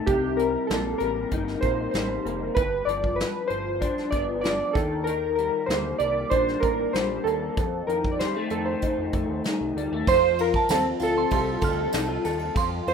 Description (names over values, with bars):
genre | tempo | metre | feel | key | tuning
indie pop, bedroom pop | 96 BPM | 4/4 | straight | unclear | A4 = 440 Hz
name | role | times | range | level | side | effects
warbly lo-fi synth keys | melody | 0.0-12.9 s | G4 to D5 | -25 LUFS | right 2 dB | lush chorus, plate reverb, tape echo
electric guitar through a small old amp | accompaniment | 0.0-12.9 s | F2 to A4 | -28 LUFS | left 3 dB | ensemble chorus, warbly pitch drift, plate reverb
fat analog bass | bass | 0.1-12.9 s | F1 to F2 | -34 LUFS | equal | none
soft brush drum kit | drums | 0.1-12.9 s | hi-hat, kick drum, ride cymbal, snare drum | -29 LUFS | equal | none
soft synth bell | second line | 10.1-12.9 s | A5 to F6 | -28 LUFS | right 4 dB | lush chorus, plate reverb, tape echo
tambourine | percussion | 10.1-12.7 s | none | -42 LUFS | right 8 dB | none
room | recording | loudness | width
wet studio reverb, RT60 0.6 s | rough home demo mix | -22 LUFS | side -6 dB against mid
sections
0.0-10.1 A section; 10.1-12.9 B section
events
none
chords
0.1 Cm7; 2.6 G7; 4.8 Ebmaj7; 7.6 F7